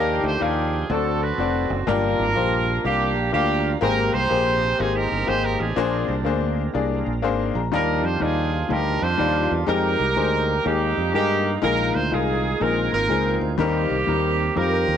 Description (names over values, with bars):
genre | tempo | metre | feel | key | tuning
gospel | 123 BPM | 4/4 | swing 65% on 8ths | Eb major | A4 = 440 Hz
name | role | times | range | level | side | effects
bright horn section | melody | 0.0-15.0 s | Bb3 to C5 | -23 LUFS | right 3 dB | cassette tape
clear grand piano | accompaniment | 0.0-14.9 s | G2 to Bb5 | -24 LUFS | left 8 dB | cassette tape
overdriven tonewheel organ | sustained chords | 0.0-15.0 s | Eb3 to G5 | -33 LUFS | right 10 dB | chorus vibrato, slow rotary speaker, cassette tape
fingered electric bass | bass | 0.0-15.0 s | F1 to G2 | -26 LUFS | right 2 dB | none
room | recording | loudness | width
moderate booth ambience, RT60 0.2 s | home recording on cassette | -19 LUFS | side -8 dB against mid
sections
0.0-15.0 A section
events
grand piano fill 7.0-7.7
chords
0.0 Ebmaj9; 0.9 D7; 1.9 Gm7; 3.8 Abmaj9; 5.8 Bb9; 7.7 Ebmaj9; 9.7 Fm11; 11.6 Bb7sus4; 12.6 Bb9sus4; 13.6 Eb6